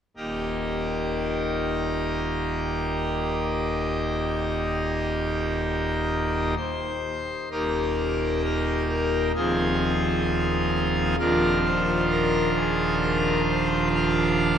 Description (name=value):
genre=classical, chorale-style piece for pipe organ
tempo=65 BPM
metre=4/4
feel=straight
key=Eb major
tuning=A4 = 440 Hz
part: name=pipe organ, full organ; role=solo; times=0.2-14.6 s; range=Eb1 to F5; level=-22 LUFS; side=equal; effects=none
room=wet cathedral reverb, RT60 4.2 s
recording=none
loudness=-22 LUFS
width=side -8 dB against mid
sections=0.2-7.5 A section; 7.5-14.6 B section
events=none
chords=0.2 Eb; 9.4 Fm7/Eb; 11.2 Cm11/Eb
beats=| 0.17 1.10 2.02 2.93 | 3.84 4.75 5.66 6.59 | 7.53 8.45 9.37 10.29 | 11.20 12.11 13.03 13.96